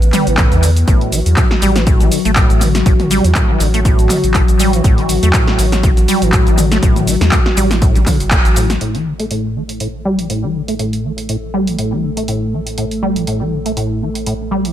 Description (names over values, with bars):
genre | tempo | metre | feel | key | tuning
acid house | 121 BPM | 4/4 | swing 55% on 16ths | unclear | A4 = 440 Hz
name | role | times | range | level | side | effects
dark analog pad | sustained chords | 0.0-14.7 s | F#3 to B4 | -21 LUFS | left 1 dB | chorus, sidechain pumping
round analog bass | bass | 0.0-14.7 s | G1 to E2 | -18 LUFS | equal | sidechain pumping
punchy analog drum machine | drums | 0.0-14.7 s | handclaps, hi-hat, shaker, snare drum, toms | -19 LUFS | equal | analog delay
acid bass, saw | riff | 0.1-14.7 s | A2 to A3 | -18 LUFS | equal | analog chorus, analog delay
electronic kick drum | drums | 0.4-8.4 s | none | -13 LUFS | equal | none
room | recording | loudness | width
digital ambience | echo-heavy mix | -11 LUFS | side -11 dB against mid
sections
0.0-8.8 A section; 8.8-14.7 B section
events
drop 0.0-8.8; band accent 8.3; filter sweep on acid bass 8.8-14.7; filter sweep on analog synth pad 8.8-14.7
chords
0.0 A5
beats
0.38 | 0.88 1.37 1.87 2.36 | 2.86 3.36 3.85 4.35 | 4.84 5.34 5.83 6.33 | 6.83 7.32 7.82 8.31 | 8.81 9.31 9.80 10.30 | 10.79 11.29 11.79 12.28 | 12.78 13.27 13.77 14.27